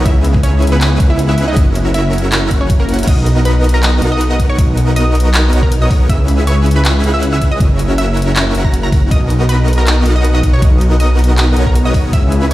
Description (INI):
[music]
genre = future bass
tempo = 159 BPM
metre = 4/4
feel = half-time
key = B major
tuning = A4 = 440 Hz
[part]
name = shimmering ambient pad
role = sustained chords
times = 0.0-3.1 s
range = C#3 to A#4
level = -27 LUFS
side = equal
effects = none
[part]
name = supersaw chords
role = riff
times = 0.0-12.5 s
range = B3 to F#5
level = -18 LUFS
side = equal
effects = sidechain pumping
[part]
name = wide detuned saw bass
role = bass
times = 0.0-12.5 s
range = F#1 to C#2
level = -12 LUFS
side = equal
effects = chorus, sidechain pumping
[part]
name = wide unison pluck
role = melody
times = 0.1-12.5 s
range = A#3 to A#6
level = -22 LUFS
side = right 1 dB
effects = sidechain pumping, digital delay
[part]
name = electronic kick drum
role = drums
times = 0.1-12.2 s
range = none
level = -12 LUFS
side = equal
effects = none
[part]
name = pop drum kit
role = drums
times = 0.1-12.5 s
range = crash cymbal, handclaps, hi-hat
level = -20 LUFS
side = equal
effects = none
[sound]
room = digital ambience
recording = played on a big sound system in a bare room, stone room reverb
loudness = -10 LUFS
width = side -16 dB against mid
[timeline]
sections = 0.0-3.1 A section; 3.1-12.5 A section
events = drop 0.0-3.1, 3.1-12.5; drum fill 2.9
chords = 0.1 C#m7; 1.6 F#7; 3.1 Bmaj7; 6.1 C#m7; 7.6 F#7; 9.1 Bmaj7